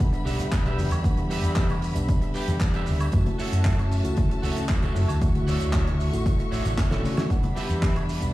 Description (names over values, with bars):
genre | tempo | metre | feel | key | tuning
nu-disco, nu disco | 115 BPM | 4/4 | straight | E dorian | A4 = 440 Hz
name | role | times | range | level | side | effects
mellow tine electric piano | accompaniment | 0.0-8.3 s | G3 to F#5 | -32 LUFS | left 1 dB | sidechain pumping, analog delay
rich studio string section | sustained chords | 0.0-8.3 s | D3 to C#6 | -35 LUFS | left 1 dB | sidechain pumping
electric guitar at the edge of break-up | riff | 0.0-8.0 s | F#4 to G5 | -34 LUFS | right 2 dB | lush chorus, analog delay
damped 70s drum kit | drums | 0.0-8.3 s | handclaps, hi-hat, shaker, snare drum, woodblock | -34 LUFS | right 1 dB | small room ambience
electronic kick drum | drums | 0.0-7.9 s | none | -25 LUFS | equal | overdrive, small room ambience
tambourine, congas and bongos | percussion | 0.0-8.3 s | none | -34 LUFS | left 2 dB | none
fingered electric bass | bass | 0.3-8.3 s | A1 to F#2 | -25 LUFS | equal | tube saturation
room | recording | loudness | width
studio ambience | played on a big sound system in a bare room, stone room reverb | -22 LUFS | side -16 dB against mid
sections
0.0-8.3 A section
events
drum fill 6.8-7.3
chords
0.0 Em7; 3.1 F#m7; 5.2 Dmaj9; 7.3 Em7